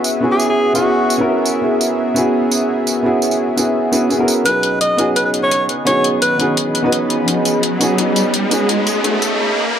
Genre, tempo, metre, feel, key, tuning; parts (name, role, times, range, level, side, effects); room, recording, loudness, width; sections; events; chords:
liquid drum and bass; 170 BPM; 4/4; straight; B major; A4 = 436 Hz
warm baby grand piano; accompaniment; 0.0-9.8 s; B3 to B4; -17 LUFS; right 1 dB
lush unison pad; sustained chords; 0.0-9.8 s; B3 to B5; -21 LUFS; equal; chorus, sidechain pumping
electronic tambourine and hi-hat; drums; 0.0-9.3 s; -21 LUFS; left 1 dB
warm alto saxophone; melody; 0.3-1.2, 4.5-6.5 s; F#4 to D#5; -17 LUFS; equal; digital delay
warm sub bass; bass; 4.5-9.4 s; B1; -34 LUFS; left 1 dB; high-pass filter
electronic kick drum; drums; 4.5-9.3 s; -30 LUFS; equal
riser; sound effects; 5.9-9.8 s; -20 LUFS; left 1 dB
moderate plate reverb, RT60 1.7 s; dark, warm production, high-pass filter; -13 LUFS; side -9 dB against mid
0.0-4.5 A section; 4.5-9.8 B section
build-up 4.5-9.8; filter sweep on analog synth pad 4.5-9.8; riser 5.9-9.8; drum fill 7.3-9.4
0.0 F#9sus4; 4.5 B6